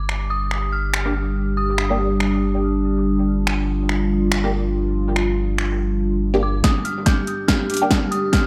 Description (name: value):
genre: deep dubstep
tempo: 142 BPM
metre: 4/4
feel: swing 57% on 16ths, half-time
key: unclear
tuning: A4 = 440 Hz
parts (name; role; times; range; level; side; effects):
- dark detuned synth bell; melody; 0.0-3.0, 6.4-8.5 s; D6 to G6; -30 LUFS; equal; chorus, dub echo
- dark analog pad; sustained chords; 0.0-8.5 s; G3 to G4; -25 LUFS; equal; chorus
- soft dub sub bass; bass; 0.0-8.5 s; G1; -26 LUFS; equal; high-pass filter
- deep house drum kit; drums; 0.1-8.4 s; finger snaps, hi-hat, snare drum; -25 LUFS; equal; overdrive
- filtered dub chord stab; stabs; 1.1-7.9 s; Bb3 to G4; -27 LUFS; equal; phaser, ensemble chorus, dub echo
- electronic kick drum; drums; 6.6-8.4 s; none; -21 LUFS; equal; overdrive
room: light reverb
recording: none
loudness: -20 LUFS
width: mono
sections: 0.0-6.6 A section; 6.6-8.5 B section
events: build-up 6.6-8.5; drum fill 6.6-8.5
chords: 0.0 G5